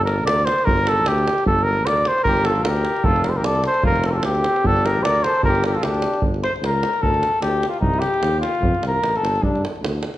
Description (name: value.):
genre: balkan folk, Balkan brass band.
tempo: 151 BPM.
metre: 2/4.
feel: swing 55% on 16ths.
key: G minor.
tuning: A4 = 439 Hz.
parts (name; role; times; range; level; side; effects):
mellow cornet; melody; 0.0-6.2 s; G4 to D5; -19 LUFS; equal; none.
warm tuba; bass; 0.0-10.0 s; F1 to G2; -24 LUFS; equal; none.
davul; percussion; 0.1-10.2 s; none; -24 LUFS; right 1 dB; none.
warm flugelhorn; second line; 2.3-9.6 s; C4 to C5; -23 LUFS; left 2 dB; none.
room: moderate recital hall reverb, RT60 1.4 s.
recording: none.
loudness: -17 LUFS.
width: side -14 dB against mid.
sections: 0.0-6.2 A section; 6.2-10.2 B section.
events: flugelhorn solo 6.2-10.2.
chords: 0.0 Gm; 3.0 F5; 4.6 G5; 6.2 Gm; 7.0 D5; 7.8 Cm; 8.6 F; 9.4 G5.